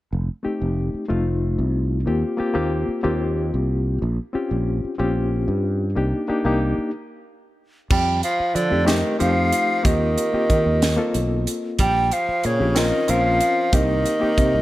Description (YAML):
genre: electric jazz fusion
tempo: 62 BPM (dotted quarters)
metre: 6/8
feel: straight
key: F mixolydian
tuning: A4 = 440 Hz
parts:
  - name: sustaining fretless electric bass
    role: bass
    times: 0.1-14.6 s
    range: F1 to F3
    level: -22 LUFS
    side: equal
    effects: wide subtle chorus
  - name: barky reed electric piano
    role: accompaniment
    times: 0.4-14.6 s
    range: A3 to Bb4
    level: -24 LUFS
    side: left 2 dB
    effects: overdrive, fast tremolo
  - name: mellow hollow jazz flute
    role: melody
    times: 7.9-14.6 s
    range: Db5 to G5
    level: -22 LUFS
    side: equal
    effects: none
  - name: bright tenor saxophone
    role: second line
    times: 7.9-14.6 s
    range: Db3 to G3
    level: -26 LUFS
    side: right 2 dB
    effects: none
  - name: crisp fusion drum kit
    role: drums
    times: 7.9-14.5 s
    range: crash cymbal, hi-hat, kick drum, snare drum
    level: -23 LUFS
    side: right 1 dB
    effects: none
room: light reverb, studio reverb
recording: none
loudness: -18 LUFS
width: side -16 dB against mid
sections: 0.1-7.9 A section; 7.9-14.6 B section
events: stop 6.9-7.9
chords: 0.1 F7; 2.1 Eb6; 4.0 Bbm6; 6.0 Cm7; 7.9 F7; 9.9 Eb6; 11.8 Bbm6; 13.7 Cm7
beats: | 0.13 1.10 | 2.08 3.05 | 4.02 5.00 | 5.97 6.94 | 7.91 8.88 | 9.86 10.83 | 11.80 12.77 | 13.74